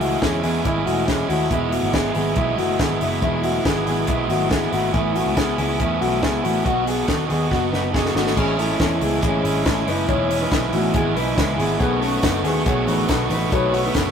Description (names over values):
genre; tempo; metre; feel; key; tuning
jangly indie pop; 140 BPM; 4/4; straight; E major; A4 = 440 Hz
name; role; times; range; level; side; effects
biting overdriven guitar; accompaniment; 0.0-14.1 s; E2 to F#4; -23 LUFS; right 4 dB; none
mellow electric guitar; arpeggios; 0.0-14.1 s; G#3 to C#5; -23 LUFS; left 4 dB; none
vintage muted picked electric bass; bass; 0.0-14.1 s; E1 to E2; -25 LUFS; equal; none
compact cocktail drum kit; drums; 0.0-14.1 s; crash cymbal, hi-hat, kick drum, snare drum; -24 LUFS; equal; none
dark upright piano; accompaniment; 11.8-14.1 s; D#4 to C#5; -28 LUFS; left 3 dB; none
tambourine; percussion; 11.8-14.0 s; none; -42 LUFS; left 1 dB; none
room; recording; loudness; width
moderate stone room reverb, RT60 1.1 s; rough rehearsal-room recording, tube saturation; -18 LUFS; side -7 dB against mid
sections
0.0-8.4 A section; 8.4-14.1 B section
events
drum fill 7.5-8.4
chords
0.0 C#m; 1.5 Eadd9; 4.9 Aadd9; 6.7 B; 8.4 Amaj7; 10.1 E6; 11.8 B7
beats
0.22 0.65 1.08 | 1.51 1.94 2.37 2.79 | 3.22 3.65 4.08 4.51 | 4.94 5.37 5.80 6.23 | 6.66 7.09 7.52 7.95 | 8.37 8.80 9.23 9.66 | 10.09 10.52 10.95 11.38 | 11.80 12.23 12.66 13.09 | 13.52 13.95